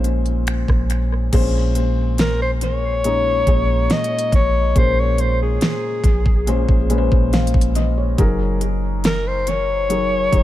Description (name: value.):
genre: contemporary R&B.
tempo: 70 BPM.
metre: 4/4.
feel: straight.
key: Bb minor.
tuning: A4 = 441 Hz.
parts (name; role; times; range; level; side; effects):
felt-muted upright piano; accompaniment; 0.0-10.4 s; Bb2 to F5; -23 LUFS; left 2 dB; analog delay.
soft 808-style bass; bass; 0.0-10.4 s; Gb1 to Bb1; -20 LUFS; equal; none.
pop drum kit; drums; 0.0-10.4 s; crash cymbal, finger snaps, hi-hat, kick drum, rim click, snare drum; -20 LUFS; equal; analog delay.
breathy alto saxophone; melody; 2.2-10.4 s; Ab4 to Eb5; -20 LUFS; left 2 dB; analog delay.
room: little or no reverb.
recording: echo-heavy mix.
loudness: -16 LUFS.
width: side -14 dB against mid.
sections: 0.0-1.3 A section; 1.3-10.4 B section.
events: none.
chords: 0.0 Bbm9; 8.2 Gb69.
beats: 0.47 | 1.33 2.18 3.04 3.90 | 4.75 5.61 6.47 7.33 | 8.18 9.04 9.90.